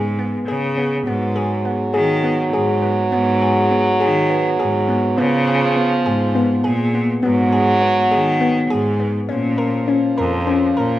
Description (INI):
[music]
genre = contemporary instrumental, chamber music in an uneven meter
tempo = 204 BPM (eighths)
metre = 7/8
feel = straight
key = G# dorian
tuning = A4 = 439 Hz
[part]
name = harp-like synth pluck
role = arpeggios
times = 0.0-11.0 s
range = B3 to A#4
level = -19 LUFS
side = left 2 dB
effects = chorus
[part]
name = bright cello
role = bass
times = 0.0-11.0 s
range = E#2 to D#3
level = -21 LUFS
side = equal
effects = none
[part]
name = stopped French horn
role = second line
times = 1.1-11.0 s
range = E#3 to F#3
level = -19 LUFS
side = right 2 dB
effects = none
[sound]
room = wet recital hall reverb, RT60 1.8 s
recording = none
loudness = -15 LUFS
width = side -14 dB against mid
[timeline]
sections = 0.0-9.3 A section; 9.3-11.0 B section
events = none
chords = 0.0 C#5; 1.1 G#m; 5.2 C#7; 7.2 G#m7; 9.3 A#m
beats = 0.18 0.48 0.77 | 1.07 1.36 1.65 1.95 2.24 2.54 2.83 | 3.12 3.42 3.71 4.00 4.30 4.59 4.89 | 5.18 5.47 5.77 6.06 6.36 6.65 6.94 | 7.24 7.53 7.83 8.12 8.41 8.71 9.00 | 9.29 9.59 9.88 10.18 10.47 10.77